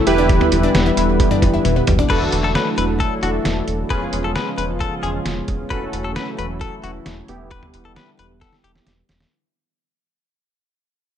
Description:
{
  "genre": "synth-pop",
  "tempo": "133 BPM",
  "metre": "4/4",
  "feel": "straight",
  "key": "E dorian",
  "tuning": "A4 = 439 Hz",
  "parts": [
    { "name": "warm analog keys", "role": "accompaniment", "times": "0.0-9.1 s", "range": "B3 to B4", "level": "-23 LUFS", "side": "right 3 dB", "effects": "chorus, low-pass filter" },
    { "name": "chorused pulse-width pad", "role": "sustained chords", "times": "0.0-9.3 s", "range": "C#3 to E#4", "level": "-23 LUFS", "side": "left 2 dB", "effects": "low-pass filter" },
    { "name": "analog pluck", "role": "arpeggios", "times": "0.0-2.1 s", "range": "E3 to E4", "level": "-22 LUFS", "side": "left 6 dB", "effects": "chorus, ping-pong delay" },
    { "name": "round analog bass", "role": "bass", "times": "0.1-9.2 s", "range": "E1 to F#1", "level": "-23 LUFS", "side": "equal", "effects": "none" },
    { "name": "lo-fi sampler-style drum kit", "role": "drums", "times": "0.1-9.3 s", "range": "cowbell, crash cymbal, hi-hat, kick drum, snare drum, toms", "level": "-21 LUFS", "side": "equal", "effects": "none" },
    { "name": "direct-recorded clean electric guitar", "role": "second line", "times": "2.1-8.7 s", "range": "F#4 to B4", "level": "-25 LUFS", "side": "left 6 dB", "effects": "ping-pong delay" }
  ],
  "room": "light reverb, digital ambience",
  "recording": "none",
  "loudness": "-16 LUFS",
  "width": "side -9 dB against mid",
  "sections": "0.0-2.1 A section; 2.1-9.3 B section",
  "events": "drum fill 1.6-2.1, 8.4-9.3; fade-out 2.1-9.3; filter sweep 2.1-9.3",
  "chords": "0.1 Em7; 2.1 Dadd9/E; 3.9 C#7/E; 5.7 F#m7/E; 7.3 Em7"
}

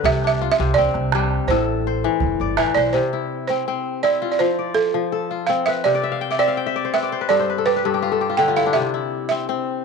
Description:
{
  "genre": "west african traditional, West African string and xylophone music",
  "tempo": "83 BPM",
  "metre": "4/4",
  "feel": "straight",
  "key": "C major",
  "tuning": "A4 = 440 Hz",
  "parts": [
    { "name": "balafon", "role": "melody", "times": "0.0-9.8 s", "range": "A4 to G5", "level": "-21 LUFS", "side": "right 7 dB", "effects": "none" },
    { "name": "kora", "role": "arpeggios", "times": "0.0-9.8 s", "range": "G2 to G5", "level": "-21 LUFS", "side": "left 8 dB", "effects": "none" },
    { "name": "upright bass", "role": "bass", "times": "0.0-2.9 s", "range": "E1 to C2", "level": "-24 LUFS", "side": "right 3 dB", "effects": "none" },
    { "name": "calabash", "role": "percussion", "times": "0.0-2.7 s", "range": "none", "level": "-26 LUFS", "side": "right 8 dB", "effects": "none" }
  ],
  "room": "moderate echo chamber reverb, RT60 1.8 s, small room ambience",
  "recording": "1960s-style stereo with parts hard left and right",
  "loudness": "-18 LUFS",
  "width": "side -5 dB against mid",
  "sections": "0.0-2.9 A section; 2.9-9.8 B section",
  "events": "kora fill 5.9-8.8",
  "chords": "0.0 C5; 1.5 Am; 2.9 C; 4.4 F; 5.8 Cmaj9; 7.3 G; 8.8 C"
}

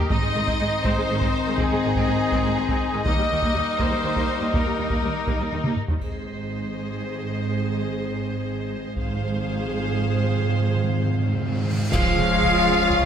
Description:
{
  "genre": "cinematic, epic orchestral film score",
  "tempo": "81 BPM (dotted quarters)",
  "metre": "6/8",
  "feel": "straight",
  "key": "Ab major",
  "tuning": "A4 = 440 Hz",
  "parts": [
    { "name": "clear symphonic violin section", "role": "melody", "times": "0.0-13.1 s", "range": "Ab4 to F5", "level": "-31 LUFS", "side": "left 2 dB", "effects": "none" },
    { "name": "rich symphonic violin section", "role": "second line", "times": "0.0-13.1 s", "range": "Eb4 to F5", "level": "-28 LUFS", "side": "left 2 dB", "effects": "none" },
    { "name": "clear symphonic viola section", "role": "accompaniment", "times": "0.0-13.1 s", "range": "Eb3 to Ab4", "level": "-31 LUFS", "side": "right 2 dB", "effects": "none" },
    { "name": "mellow French horn section", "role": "sustained chords", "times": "0.0-13.1 s", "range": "Eb3 to F4", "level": "-29 LUFS", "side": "left 5 dB", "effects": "none" },
    { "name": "warm woodwind section", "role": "sustained chords", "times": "0.0-5.8, 11.9-13.1 s", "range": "Db4 to F5", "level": "-29 LUFS", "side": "left 1 dB", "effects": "none" },
    { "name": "dark symphonic cello section", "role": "bass", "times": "0.0-13.1 s", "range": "Eb2 to F3", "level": "-29 LUFS", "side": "right 3 dB", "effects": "none" },
    { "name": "warm symphonic double bass section", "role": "bass", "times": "0.1-13.0 s", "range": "Ab1 to Eb2", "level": "-29 LUFS", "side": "right 4 dB", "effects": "none" },
    { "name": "solo taiko drums", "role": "drums", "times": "0.1-13.1 s", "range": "none", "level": "-27 LUFS", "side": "equal", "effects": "none" },
    { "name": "timpani", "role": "percussion", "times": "6.0-6.7, 9.0-11.9 s", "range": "Ab2", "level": "-31 LUFS", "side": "left 1 dB", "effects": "none" },
    { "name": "triangle, cymbal swell, clash cymbals and concert bass drum", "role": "percussion", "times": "6.0-12.9 s", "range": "none", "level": "-30 LUFS", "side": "equal", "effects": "none" },
    { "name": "cymbal swell and impact", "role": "sound effects", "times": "11.2-13.1 s", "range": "none", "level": "-35 LUFS", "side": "equal", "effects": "none" },
    { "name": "warm trombone section", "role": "sustained chords", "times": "11.9-13.1 s", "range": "F3 to Db4", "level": "-33 LUFS", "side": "right 6 dB", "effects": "none" }
  ],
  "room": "moderate scoring stage reverb, RT60 1.7 s",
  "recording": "none",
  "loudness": "-21 LUFS",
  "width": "side -8 dB against mid",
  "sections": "0.0-6.0 A section; 6.0-11.9 B section; 11.9-13.1 C section",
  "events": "drum fill 5.6-6.0; timpani fill 9.0-11.9; cymbal swell 11.2-11.9; band accent 11.9-12.4; impact 11.9-13.1",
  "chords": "0.1 Ab; 3.1 Eb; 6.0 Ab; 9.0 Fm/Ab; 11.9 Db"
}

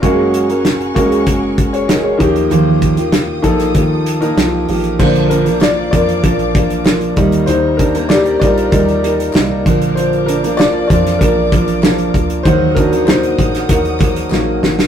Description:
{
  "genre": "piano-driven pop",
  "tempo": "97 BPM",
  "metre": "4/4",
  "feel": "straight",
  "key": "Bb major",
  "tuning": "A4 = 440 Hz",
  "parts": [
    { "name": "warm upright piano", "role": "accompaniment", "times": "0.0-14.9 s", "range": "Eb3 to Eb5", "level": "-16 LUFS", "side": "left 2 dB", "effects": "none" },
    { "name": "warm studio string section", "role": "sustained chords", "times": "0.0-14.9 s", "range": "Bb3 to Eb6", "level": "-28 LUFS", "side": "left 2 dB", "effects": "none" },
    { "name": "fingerpicked steel-string acoustic guitar", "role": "riff", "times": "0.0-14.9 s", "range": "Bb2 to Bb4", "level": "-16 LUFS", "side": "right 2 dB", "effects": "none" },
    { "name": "plucky analog bass", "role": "bass", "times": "0.0-14.9 s", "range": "Gb1 to F2", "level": "-23 LUFS", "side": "left 1 dB", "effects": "none" },
    { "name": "natural country drum kit", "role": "drums", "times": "0.0-14.9 s", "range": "crash cymbal, hi-hat, kick drum, snare drum", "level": "-15 LUFS", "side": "equal", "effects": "none" },
    { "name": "group handclap", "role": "percussion", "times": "5.6-14.5 s", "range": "none", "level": "-35 LUFS", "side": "left 4 dB", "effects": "none" }
  ],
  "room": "moderate studio reverb, RT60 0.7 s",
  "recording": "rough rehearsal-room recording, warm saturation",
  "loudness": "-11 LUFS",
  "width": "side -9 dB against mid",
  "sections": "0.0-5.0 A section; 5.0-14.9 B section",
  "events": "upright piano solo 5.0-14.9; drum fill 14.3-14.9",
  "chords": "0.0 Gbadd9; 2.2 Ebadd9; 5.0 Bb; 7.2 Eb; 9.7 Bb; 12.4 Ebm"
}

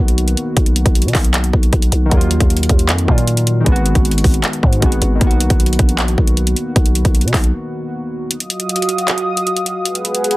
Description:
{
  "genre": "hip hop, trap",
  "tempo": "155 BPM",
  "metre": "4/4",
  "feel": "half-time",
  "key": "unclear",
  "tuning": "A4 = 442 Hz",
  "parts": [
    { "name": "warbly lo-fi synth keys", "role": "accompaniment", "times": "0.0-8.3 s", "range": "D#3 to F#4", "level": "-21 LUFS", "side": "left 1 dB", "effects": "chorus, low-pass filter" },
    { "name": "growling 808-style bass", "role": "bass", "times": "0.0-7.5 s", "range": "Ab1 to B2", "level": "-16 LUFS", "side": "equal", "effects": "none" },
    { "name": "trap drum kit", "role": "drums", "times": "0.1-10.4 s", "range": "handclaps, hi-hat, kick drum", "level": "-15 LUFS", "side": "equal", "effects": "none" },
    { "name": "dark analog pad", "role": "sustained chords", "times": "8.5-10.4 s", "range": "Gb4 to Eb6", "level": "-17 LUFS", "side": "right 1 dB", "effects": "chorus" }
  ],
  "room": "little or no reverb",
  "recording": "dense, heavily limited modern master",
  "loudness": "-13 LUFS",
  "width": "side -19 dB against mid",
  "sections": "0.0-10.4 A section",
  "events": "break 7.5-8.3; kick muted 8.3-10.4",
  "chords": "0.0 Bmaj7; 2.1 Ebmadd9; 3.7 Abm7; 5.2 Bmaj7; 8.3 Ebmadd9; 9.9 Abm7"
}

